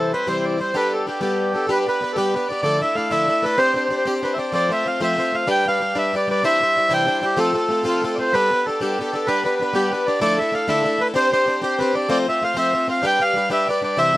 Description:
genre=celtic folk, Celtic jig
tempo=127 BPM (dotted quarters)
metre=6/8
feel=straight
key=G mixolydian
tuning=A4 = 440 Hz
part: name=accordion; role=melody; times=0.0-14.2 s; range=F4 to G5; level=-19 LUFS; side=right 1 dB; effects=none
part: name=picked plugged-in twelve-string acoustic guitar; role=accompaniment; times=0.0-14.2 s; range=C3 to C5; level=-22 LUFS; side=left 1 dB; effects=slapback echo
room=little or no reverb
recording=recorded outdoors, with no room sound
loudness=-17 LUFS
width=side -17 dB against mid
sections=0.0-1.7 A section; 1.7-9.3 B section; 9.3-14.2 B section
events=none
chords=0.0 C; 0.7 Gadd9; 1.7 G; 2.6 Dmadd9; 3.6 Csus2; 4.5 F; 5.5 G; 6.4 Cadd9; 7.4 F; 8.3 Gadd9; 9.3 G; 10.2 Dmadd9; 11.2 Csus2; 12.1 F; 13.0 G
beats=0.26 | 0.74 1.21 | 1.69 2.16 | 2.64 3.11 | 3.59 4.06 | 4.54 5.01 | 5.49 5.96 | 6.43 6.91 | 7.38 7.85 | 8.33 8.80 | 9.27 9.74 | 10.21 10.69 | 11.16 11.63 | 12.10 12.57 | 13.04 13.51 | 13.98

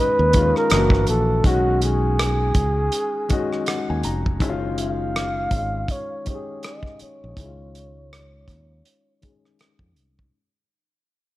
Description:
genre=R&B, neo-soul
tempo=81 BPM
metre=4/4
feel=swing 59% on 16ths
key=unclear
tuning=A4 = 440 Hz
part: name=breathy flugelhorn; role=melody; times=0.0-9.6 s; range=F#4 to E#5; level=-23 LUFS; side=right 2 dB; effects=low-pass filter
part: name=warm upright piano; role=accompaniment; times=0.0-10.4 s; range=D#3 to A#5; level=-26 LUFS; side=left 4 dB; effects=low-pass filter
part: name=fingered electric bass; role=bass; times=0.2-10.3 s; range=E#1 to E#2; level=-23 LUFS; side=equal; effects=none
part: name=warm soul drum kit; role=drums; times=0.3-10.3 s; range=hi-hat, kick drum, rim click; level=-22 LUFS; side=equal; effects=none
room=light reverb, small room ambience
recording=dark, warm production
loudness=-18 LUFS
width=side -16 dB against mid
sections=0.0-10.3 A section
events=fade-out 0.0-10.3; filter sweep 0.0-10.3; upright piano fill 2.9-4.4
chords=0.0 G#5; 0.7 F#7alt; 1.4 Badd9; 4.4 F#maj7sus2; 7.4 C#add9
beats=0.70 | 1.44 2.18 2.92 3.67 | 4.41 5.15 5.89 6.63 | 7.37 8.11 8.85 9.59

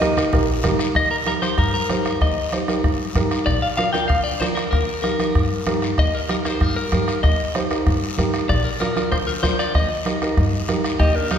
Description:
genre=latin, cumbia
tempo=191 BPM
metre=4/4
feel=straight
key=Eb major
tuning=A4 = 440 Hz
part: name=warm clarinet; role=melody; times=0.0-0.6, 11.0-11.4 s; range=Bb4 to Eb5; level=-24 LUFS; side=equal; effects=none
part: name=clean electric guitar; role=second line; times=0.0-11.4 s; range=D4 to G5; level=-24 LUFS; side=left 3 dB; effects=none
part: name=dark upright piano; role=accompaniment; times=0.0-11.4 s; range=D4 to C5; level=-24 LUFS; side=right 2 dB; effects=none
part: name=upright bass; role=bass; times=0.0-11.4 s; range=Bb1 to G2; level=-25 LUFS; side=equal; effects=none
part: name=bombo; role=percussion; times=0.0-11.4 s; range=none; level=-23 LUFS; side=equal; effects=none
part: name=congas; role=percussion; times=0.0-11.4 s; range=none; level=-28 LUFS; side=right 2 dB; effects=none
part: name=guiro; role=percussion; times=0.0-11.4 s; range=none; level=-32 LUFS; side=left 4 dB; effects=none
room=wet scoring stage reverb, RT60 1.7 s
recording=recorded in a church or concert hall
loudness=-18 LUFS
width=side -8 dB against mid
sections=1.0-11.0 A section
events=clean electric guitar solo 1.0-11.0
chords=0.0 Eb; 3.5 Bb; 4.7 Eb; 8.5 Bb; 9.7 Eb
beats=0.02 0.33 0.64 | 0.96 1.27 1.58 1.90 | 2.21 2.53 2.84 3.15 | 3.47 3.78 4.10 4.41 | 4.72 5.04 5.35 5.67 | 5.98 6.29 6.61 6.92 | 7.24 7.55 7.87 8.18 | 8.49 8.81 9.12 9.43 | 9.75 10.06 10.38 10.69 | 11.00 11.31

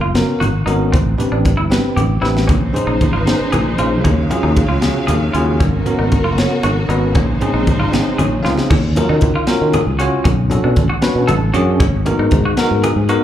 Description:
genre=electric jazz fusion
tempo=77 BPM (dotted quarters)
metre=6/8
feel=straight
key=unclear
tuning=A4 = 435 Hz
part: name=semi-hollow electric guitar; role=stabs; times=0.0-13.2 s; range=C4 to A4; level=-24 LUFS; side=equal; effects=wide subtle chorus, slapback echo
part: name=sustaining fretless electric bass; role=bass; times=0.0-13.2 s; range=Gb1 to Eb3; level=-17 LUFS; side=equal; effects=none
part: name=barky tine electric piano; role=accompaniment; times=0.1-13.2 s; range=Cb4 to A5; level=-19 LUFS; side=equal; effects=fast stereo tremolo, slapback echo
part: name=crisp fusion drum kit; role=drums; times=0.1-13.2 s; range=crash cymbal, hi-hat, kick drum, snare drum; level=-19 LUFS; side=equal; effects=none
part: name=congas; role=percussion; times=0.2-13.0 s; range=none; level=-22 LUFS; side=left 1 dB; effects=slapback echo
part: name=clear studio string section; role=sustained chords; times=2.5-8.7 s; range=Db3 to F5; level=-23 LUFS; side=equal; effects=none
room=small room ambience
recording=live gig heard through the venue's PA, club reverb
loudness=-13 LUFS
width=side -11 dB against mid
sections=0.0-8.7 A section; 8.7-13.2 B section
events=drum fill 2.2, 8.4; tine electric piano fill 4.8-5.6, 7.9-8.7, 11.0-11.8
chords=0.0 Abm11; 0.9 Am11; 2.5 Bbm11; 4.0 Ebm11; 5.6 Abm11; 7.2 Bbm11; 8.7 Ebm9; 10.3 Bm9; 11.8 Abm9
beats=0.16 | 0.94 1.71 | 2.49 3.27 | 4.05 4.83 | 5.60 6.38 | 7.16 7.93 | 8.71 9.48 | 10.26 11.03 | 11.80 12.58

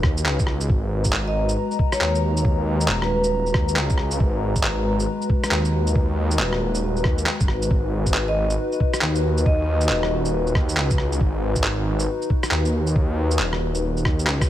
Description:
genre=future garage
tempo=137 BPM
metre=4/4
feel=swing 63% on 16ths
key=G# minor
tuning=A4 = 440 Hz
part: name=dark analog pad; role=sustained chords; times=0.0-14.5 s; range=G#3 to A#5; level=-26 LUFS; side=left 2 dB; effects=chorus, sidechain pumping
part: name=swelling detuned saw bass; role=bass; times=0.0-14.5 s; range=D#1 to D#2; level=-23 LUFS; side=equal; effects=tube saturation, sidechain pumping
part: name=electronic kick drum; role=drums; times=0.0-14.5 s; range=none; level=-21 LUFS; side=equal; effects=none
part: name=electronic rim click, shaker and handclaps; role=drums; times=0.0-14.5 s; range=none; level=-25 LUFS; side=equal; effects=none
part: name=vibraphone with medium hard mallets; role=melody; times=1.3-3.5, 8.3-10.1 s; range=B4 to D#5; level=-27 LUFS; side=equal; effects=ping-pong delay
room=light reverb, digital ambience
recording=none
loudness=-19 LUFS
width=side -12 dB against mid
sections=0.0-14.5 A section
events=drum fill 14.3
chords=0.0 B; 0.7 G#m9; 7.7 B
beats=0.26 | 0.70 1.14 1.57 2.01 | 2.45 2.89 3.33 3.76 | 4.20 4.64 5.08 5.52 | 5.95 6.39 6.83 7.27 | 7.71 8.14 8.58 9.02 | 9.46 9.90 10.33 10.77 | 11.21 11.65 12.09 12.52 | 12.96 13.40 13.84 14.28

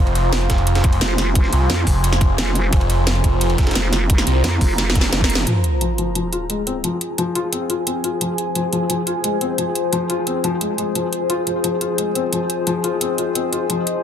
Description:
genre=dark technical drum and bass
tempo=175 BPM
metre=4/4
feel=straight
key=F minor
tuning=A4 = 440 Hz
part: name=deep dark ambient pad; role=sustained chords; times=0.0-14.0 s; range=F4 to C6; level=-24 LUFS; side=equal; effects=chorus, built-in reverb, sidechain pumping
part: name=phased detuned saw bass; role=bass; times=0.0-4.4 s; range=F1 to C2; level=-17 LUFS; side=equal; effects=phaser, overdrive, sidechain pumping
part: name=breakbeat sampler-style drum kit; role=drums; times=0.1-5.5 s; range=hi-hat, ride cymbal, snare drum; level=-30 LUFS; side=right 2 dB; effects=high-pass filter on cymbals, high-pass filter on snare, high-pass filter on hats
part: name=drum and bass drum kit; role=drums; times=0.2-13.9 s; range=hi-hat, snare drum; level=-23 LUFS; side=right 1 dB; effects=none
part: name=electronic kick drum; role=drums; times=0.5-5.3 s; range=none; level=-17 LUFS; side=equal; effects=none
part: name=vowel-sweep wobble bass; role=bass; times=1.0-5.5 s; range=F1 to F2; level=-20 LUFS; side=equal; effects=chorus
part: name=felt-muted upright piano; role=arpeggios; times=5.5-13.8 s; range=F3 to F4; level=-23 LUFS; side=left 3 dB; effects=sidechain pumping, low-pass filter, ping-pong delay
part: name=sub drop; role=sound effects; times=5.5-6.8 s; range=none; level=-22 LUFS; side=equal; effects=none
part: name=warbly tape-like pad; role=texture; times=6.3-14.0 s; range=F4 to Ab5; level=-26 LUFS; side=left 3 dB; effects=chorus, built-in reverb, sidechain pumping
room=light reverb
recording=dense, heavily limited modern master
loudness=-16 LUFS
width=side -9 dB against mid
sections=0.0-5.5 A section; 5.5-14.0 B section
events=drop 0.0-5.5; drum fill 4.8-5.5; band accent 5.4; impact 5.5-6.8; filter sweep on felt piano 5.5-14.0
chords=0.0 Fm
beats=0.33 0.67 1.01 | 1.35 1.70 2.04 2.38 | 2.73 3.07 3.41 3.75 | 4.10 4.44 4.78 5.13 | 5.47 5.81 6.15 6.50 | 6.84 7.18 7.53 7.87 | 8.21 8.55 8.90 9.24 | 9.58 9.93 10.27 10.61 | 10.95 11.30 11.64 11.98 | 12.33 12.67 13.01 13.35 | 13.70

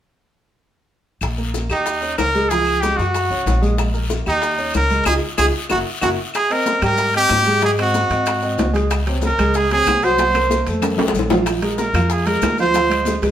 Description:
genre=latin, salsa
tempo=188 BPM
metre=4/4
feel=straight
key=Ab major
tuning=A4 = 437 Hz
part: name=upright bass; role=bass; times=1.2-13.3 s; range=Gb1 to Ab2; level=-22 LUFS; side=equal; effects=none
part: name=bongos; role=percussion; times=1.2-13.3 s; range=none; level=-26 LUFS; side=left 5 dB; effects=none
part: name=claves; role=percussion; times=1.2-13.1 s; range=none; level=-31 LUFS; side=left 2 dB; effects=none
part: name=guiro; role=percussion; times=1.2-13.3 s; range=none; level=-33 LUFS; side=left 4 dB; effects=none
part: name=maracas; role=percussion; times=1.2-13.3 s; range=none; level=-35 LUFS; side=left 5 dB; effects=none
part: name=warm upright piano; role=accompaniment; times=1.4-13.3 s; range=C3 to Ab5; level=-22 LUFS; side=right 1 dB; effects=none
part: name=brilliant trumpet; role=melody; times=1.7-13.2 s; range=Eb4 to C5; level=-18 LUFS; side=right 1 dB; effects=none
part: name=congas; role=percussion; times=6.3-13.3 s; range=none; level=-28 LUFS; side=left 2 dB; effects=none
part: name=timbales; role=percussion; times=6.4-13.3 s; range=none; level=-27 LUFS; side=right 3 dB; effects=none
room=moderate stone room reverb, RT60 0.9 s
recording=band playing live in one room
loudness=-15 LUFS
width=side -10 dB against mid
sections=1.2-6.3 A section; 6.3-13.3 B section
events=band accent 5.1-6.3; drum fill 5.9-6.3, 10.2-11.5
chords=1.2 Eb/Bb; 1.9 Eb7; 2.5 Db; 3.1 Gb; 3.8 Ebadd11/Bb; 4.4 Eb7; 5.1 Dbadd9; 5.7 Gb7; 6.3 Abmaj9; 7.6 Ab7; 8.9 Db5; 10.2 Gbmaj7#11/C; 10.8 F; 11.5 Bb5; 12.7 Dm7b5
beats=| 1.22 1.54 1.86 2.18 | 2.50 2.82 3.14 3.46 | 3.78 4.10 4.42 4.74 | 5.06 5.38 5.70 6.02 | 6.34 6.66 6.98 7.30 | 7.62 7.94 8.26 8.58 | 8.90 9.22 9.54 9.86 | 10.18 10.50 10.82 11.14 | 11.46 11.78 12.10 12.42 | 12.74 13.06

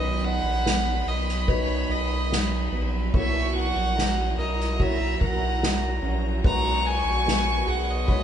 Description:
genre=pop ballad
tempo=72 BPM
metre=4/4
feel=straight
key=B major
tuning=A4 = 441 Hz
part: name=warm violin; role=melody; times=0.0-8.2 s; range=C#5 to A#5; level=-28 LUFS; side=equal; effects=none
part: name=warm studio violin section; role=second line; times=0.0-8.2 s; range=A#5 to C#6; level=-32 LUFS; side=right 1 dB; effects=none
part: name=warm upright piano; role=accompaniment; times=0.0-8.2 s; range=D#3 to C#5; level=-34 LUFS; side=left 1 dB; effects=none
part: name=warm analog pad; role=sustained chords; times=0.0-8.2 s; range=F#3 to B4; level=-34 LUFS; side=right 2 dB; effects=chorus
part: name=nylon-string guitar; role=arpeggios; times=0.0-8.2 s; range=B3 to A#4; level=-36 LUFS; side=right 1 dB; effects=none
part: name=saturated sub bass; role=bass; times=0.0-8.2 s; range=A#1 to B1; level=-27 LUFS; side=equal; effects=none
part: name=soft-mallet drum kit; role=drums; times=0.2-8.2 s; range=kick drum, ride cymbal, snare drum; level=-28 LUFS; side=equal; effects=none
room=moderate large studio reverb, RT60 1.3 s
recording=band playing live in one room, nothing above 10.4 kHz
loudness=-22 LUFS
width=side -9 dB against mid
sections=0.0-8.2 A section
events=none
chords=0.0 Bmaj7; 3.1 F#7; 6.4 G#m7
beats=0.65 1.48 2.31 | 3.14 3.97 4.79 5.62 | 6.44 7.27 8.09

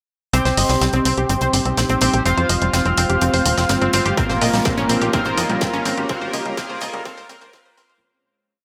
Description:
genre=melodic techno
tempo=125 BPM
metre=4/4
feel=straight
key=unclear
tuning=A4 = 441 Hz
part: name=deep dark ambient pad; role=sustained chords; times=1.5-8.0 s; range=G3 to Db5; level=-31 LUFS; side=equal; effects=chorus, built-in reverb, sidechain pumping
part: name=analog pluck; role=arpeggios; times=0.3-7.9 s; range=G3 to Eb5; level=-25 LUFS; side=equal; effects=chorus, sidechain pumping, dub echo
part: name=sync-sweep polysynth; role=stabs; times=0.3-8.0 s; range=Bb3 to F5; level=-24 LUFS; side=equal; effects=chorus, sidechain pumping, dub echo
part: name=tight sequencer bass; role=bass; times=0.3-8.0 s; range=Eb1 to Bb2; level=-24 LUFS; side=equal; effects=tube saturation, sidechain pumping
part: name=electronic hi-hat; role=drums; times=0.3-8.0 s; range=none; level=-27 LUFS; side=equal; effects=none
part: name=tight metal drum kit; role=drums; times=0.3-7.9 s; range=hi-hat, snare drum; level=-30 LUFS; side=equal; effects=sidechain pumping on hats, high-pass filter on hats, high-pass filter on snare, high-pass filter on room
part: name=riser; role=sound effects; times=3.1-8.0 s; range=none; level=-36 LUFS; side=equal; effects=none
part: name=electronic kick drum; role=drums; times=4.2-7.6 s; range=none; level=-27 LUFS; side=equal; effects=distortion
room=moderate recital hall reverb, RT60 1.7 s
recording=high-pass filter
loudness=-18 LUFS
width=mono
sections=0.3-8.0 build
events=build-up 0.3-8.0; filter sweep on ambient pad 0.3-8.0; fade-out 5.5-8.0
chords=0.3 Cm; 2.3 Fm; 4.2 Bbm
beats=| 0.34 0.81 1.29 1.77 | 2.25 2.73 3.21 3.69 | 4.17 4.66 5.13 5.62 | 6.09 6.58 7.05 7.54

